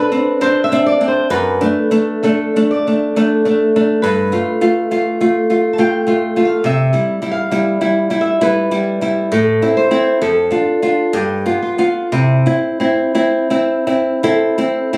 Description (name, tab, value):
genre	romantic duo for nylon-string guitar and classical guitar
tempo	54-70 BPM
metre	3/4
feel	rubato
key	C major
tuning	A4 = 441 Hz
part	flamenco guitar	melody	0.0-15.0 s	E4 to A5	-21 LUFS	equal	none
part	nylon-string guitar	accompaniment	0.0-15.0 s	F2 to F4	-16 LUFS	equal	none
room	moderate studio ambience, RT60 0.5 s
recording	recorded on a phone in the room, studio reverb, compression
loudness	-15 LUFS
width	mono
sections	0.0-15.0 A section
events	none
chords	0.0 D7(no3); 1.3 D5; 4.0 G9; 6.7 C (rootless); 9.3 Am; 10.2 Dm/F; 11.1 G7; 12.1 C